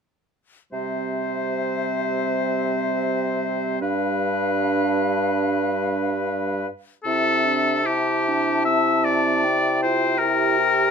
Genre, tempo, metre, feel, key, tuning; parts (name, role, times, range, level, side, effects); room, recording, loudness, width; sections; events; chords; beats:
classical, slow romantic movement for wind quintet; 76 BPM; 4/4; uneven beats, rubato; C major; A4 = 438 Hz
hollow concert flute; melody; 0.7-10.9 s; E5 to A5; -28 LUFS; left 7 dB
bright oboe; second line; 0.7-10.9 s; G4 to E5; -23 LUFS; left 3 dB
dark clarinet; accompaniment; 0.7-10.9 s; C4 to G4; -29 LUFS; right 12 dB
mellow French horn; accompaniment; 0.7-10.9 s; G3 to G4; -30 LUFS; left 1 dB
mellow bassoon; bass; 0.7-10.9 s; G2 to C3; -26 LUFS; right 4 dB
light reverb; minimal, uncompressed stereo recording; -20 LUFS; side -6 dB against mid
0.7-7.0 A section; 7.0-10.9 B section
0.7 C; 3.8 G7; 7.0 C; 10.2 C7
| 0.72 1.53 2.30 3.06 | 3.81 4.60 5.38 6.20 | 7.05 7.87 8.66 9.44 | 10.20